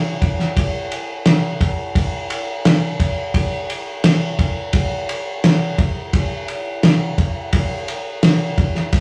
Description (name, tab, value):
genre	rock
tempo	86 BPM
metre	4/4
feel	straight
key	none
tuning	none
part	cloth-damped thuddy drum kit	drums	0.2-9.0 s	kick drum, ride cymbal, snare drum	-19 LUFS	equal	none
room	moderate studio reverb, RT60 0.6 s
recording	rough rehearsal-room recording, tube saturation, studio reverb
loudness	-19 LUFS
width	mono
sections	0.0-9.0 A section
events	none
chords	none